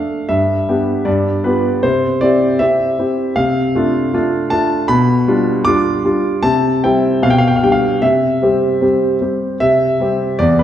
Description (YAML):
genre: classical-period piano sonatina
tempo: 78 BPM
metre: 2/4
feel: straight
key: C major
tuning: A4 = 440 Hz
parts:
  - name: warm concert grand piano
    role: solo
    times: 0.0-10.6 s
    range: E2 to D6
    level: -12 LUFS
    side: equal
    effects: none
room: wet recital hall reverb, RT60 1.5 s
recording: heard from further back in the room, faint mains hum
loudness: -12 LUFS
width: side -10 dB against mid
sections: 0.0-9.6 A section; 9.6-10.6 A section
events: none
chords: 0.3 G; 1.1 G7; 1.8 C; 3.4 Dm7/C; 4.9 G7/B; 6.4 C; 7.2 G/B; 8.0 C